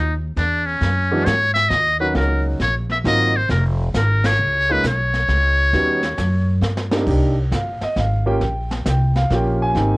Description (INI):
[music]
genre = jazz, small-group swing and bop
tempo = 134 BPM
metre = 3/4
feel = swing 66% on 8ths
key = G# minor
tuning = A4 = 440 Hz
[part]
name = trumpet with metal mute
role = melody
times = 0.0-6.6 s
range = C#4 to E5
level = -18 LUFS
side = left 1 dB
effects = cassette tape
[part]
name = upright bass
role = bass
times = 0.0-10.0 s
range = E#1 to G#2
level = -20 LUFS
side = equal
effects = none
[part]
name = jazz brush drum kit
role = drums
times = 0.4-10.0 s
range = brushed snare drum, crash cymbal, hi-hat, kick drum, ride cymbal, snare drum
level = -26 LUFS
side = equal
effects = cassette tape
[part]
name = warm grand piano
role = accompaniment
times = 1.1-10.0 s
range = E3 to Ab5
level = -21 LUFS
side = right 1 dB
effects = cassette tape
[sound]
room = little or no reverb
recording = home recording on cassette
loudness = -16 LUFS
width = side -24 dB against mid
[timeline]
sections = 0.0-7.1 A section; 7.1-10.0 B section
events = band accent 4.2; drum fill 6.6-7.1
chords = 0.4 E9; 1.7 D#m7; 3.1 G#13; 4.4 N.C.; 5.7 D#7alt; 6.6 G5; 7.1 Cm7; 8.4 Bbm69